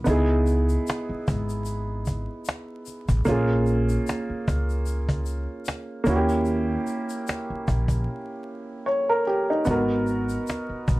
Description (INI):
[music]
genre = lo-fi hip hop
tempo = 75 BPM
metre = 4/4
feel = swing 56% on 16ths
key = G# minor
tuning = A4 = 440 Hz
[part]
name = dark upright piano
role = accompaniment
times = 0.0-11.0 s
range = A#3 to C#5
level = -25 LUFS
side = right 1 dB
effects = none
[part]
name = upright bass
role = bass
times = 0.0-11.0 s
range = G#1 to D#2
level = -25 LUFS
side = equal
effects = none
[part]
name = cajon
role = drums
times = 0.1-11.0 s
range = none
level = -27 LUFS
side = equal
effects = vintage 12-bit sampler grit
[part]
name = egg shaker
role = percussion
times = 0.1-11.0 s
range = none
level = -46 LUFS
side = left 10 dB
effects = none
[sound]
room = light reverb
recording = vinyl crackle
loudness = -22 LUFS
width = side -19 dB against mid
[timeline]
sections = 0.0-9.7 A section; 9.7-11.0 B section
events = drums muted 8.1-9.7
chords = 0.1 C#m9; 3.3 A#m7; 6.1 D#7b9; 9.7 G#m9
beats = | 0.07 0.87 1.67 2.47 | 3.27 4.07 4.87 5.67 | 6.47 7.27 8.07 8.87 | 9.67 10.47